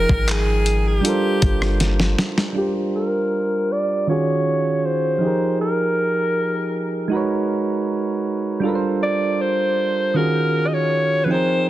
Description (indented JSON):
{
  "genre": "contemporary R&B",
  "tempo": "79 BPM",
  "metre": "4/4",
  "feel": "straight",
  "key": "G phrygian",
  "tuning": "A4 = 441 Hz",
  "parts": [
    { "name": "clear alto saxophone", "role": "melody", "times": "0.0-11.7 s", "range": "G4 to Eb5", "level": "-21 LUFS", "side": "equal", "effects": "low-pass filter" },
    { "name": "soft electric-piano-like synth keys", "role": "accompaniment", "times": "0.0-11.7 s", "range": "Eb3 to G5", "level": "-21 LUFS", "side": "right 2 dB", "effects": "chorus, low-pass filter" },
    { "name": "soft 808-style bass", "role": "bass", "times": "0.0-2.2 s", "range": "G1 to Ab1", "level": "-20 LUFS", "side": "equal", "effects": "none" },
    { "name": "dusty soul sampler-style drum kit", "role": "drums", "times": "0.1-2.6 s", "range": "handclaps, hi-hat, kick drum, rim click, snare drum", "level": "-21 LUFS", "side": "equal", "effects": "none" }
  ],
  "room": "light reverb, digital ambience",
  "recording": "dense, heavily limited modern master",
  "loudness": "-18 LUFS",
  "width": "side -14 dB against mid",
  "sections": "0.0-2.6 A section; 2.6-11.7 B section",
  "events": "drum fill 1.8-2.6; filter sweep 2.6-11.7",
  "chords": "0.0 Fm11; 1.0 Gm11; 2.6 Gm7; 4.1 Ebm11; 5.2 Fm11; 7.1 Abm11; 8.6 Gm11; 10.2 Ebm11",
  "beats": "0.28 1.04 1.80 | 2.56 3.32 4.08 4.84 | 5.60 6.36 7.12 7.88 | 8.64 9.40 10.16 10.92 | 11.68"
}